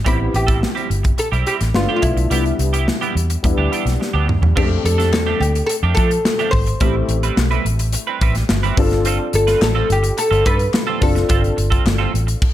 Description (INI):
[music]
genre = polished 1980s jazz-funk pop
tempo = 107 BPM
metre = 4/4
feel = straight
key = unclear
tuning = A4 = 440 Hz
[part]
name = warm concert grand piano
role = accompaniment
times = 0.0-12.4 s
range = G3 to A4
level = -24 LUFS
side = left 3 dB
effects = ensemble chorus
[part]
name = clean electric guitar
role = riff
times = 0.0-12.3 s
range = E3 to B4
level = -25 LUFS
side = right 8 dB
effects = analog chorus
[part]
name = oud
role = melody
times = 0.1-12.5 s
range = E4 to C5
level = -21 LUFS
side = left 1 dB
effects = none
[part]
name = vintage muted fingered electric bass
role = bass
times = 0.1-12.3 s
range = F#1 to F3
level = -18 LUFS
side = equal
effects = none
[part]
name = modern studio drum kit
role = drums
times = 0.1-12.5 s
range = crash cymbal, hi-hat, kick drum, snare drum, toms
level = -20 LUFS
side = equal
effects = gated reverb
[part]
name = group handclap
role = percussion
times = 5.1-12.0 s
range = none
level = -32 LUFS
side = left 10 dB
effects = none
[sound]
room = light reverb, small room ambience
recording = none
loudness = -15 LUFS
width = side -12 dB against mid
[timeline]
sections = 0.0-4.6 A section; 4.6-12.5 B section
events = drum fill 4.0-4.6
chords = 0.1 Am7; 1.8 G7; 2.3 Cmaj7; 3.4 Em7; 4.6 F69; 6.8 Am9; 8.8 G9sus4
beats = | 0.06 0.63 1.19 1.75 | 2.31 2.88 3.44 4.00 | 4.57 5.13 5.69 6.25 | 6.81 7.38 7.94 8.50 | 9.06 9.62 10.18 10.74 | 11.30 11.86 12.42